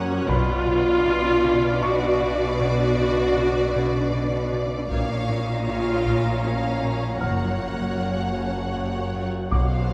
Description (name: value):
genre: cinematic, suspense film score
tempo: 78 BPM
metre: 3/4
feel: straight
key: B hungarian minor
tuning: A4 = 440 Hz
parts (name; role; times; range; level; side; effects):
- rich studio violin section; melody; 0.0-9.9 s; D5 to F#5; -36 LUFS; equal; none
- rich studio violin section; second line; 0.0-9.9 s; B4 to D5; -35 LUFS; equal; none
- rich studio viola section; accompaniment; 0.0-9.9 s; A#3 to A4; -27 LUFS; equal; none
- flickering grainy texture; sustained chords; 0.0-9.9 s; D4 to A#5; -33 LUFS; equal; built-in reverb
- concert harp; riff; 0.0-9.9 s; F#2 to B2; -33 LUFS; equal; none
- rich studio cello section; bass; 0.0-9.9 s; F#2 to B2; -31 LUFS; equal; none
- overtone-sweeping drone; drone; 0.0-9.9 s; F#1 to B1; -34 LUFS; equal; chorus, built-in reverb
- warm grand piano; texture; 0.0-9.9 s; D5 to E#6; -36 LUFS; equal; none
- warm studio double bass section; bass; 0.3-1.0, 4.9-9.9 s; F#1 to B1; -32 LUFS; equal; none
- solo taiko drums; drums; 0.3-9.9 s; none; -30 LUFS; equal; none
- rich studio violin section; texture; 0.3-4.5 s; B5 to D6; -41 LUFS; equal; none
room: moderate scoring stage reverb, RT60 2.0 s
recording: none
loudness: -23 LUFS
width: mono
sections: 0.0-9.5 A section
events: none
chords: 0.3 Bm; 4.9 A#m; 7.2 F#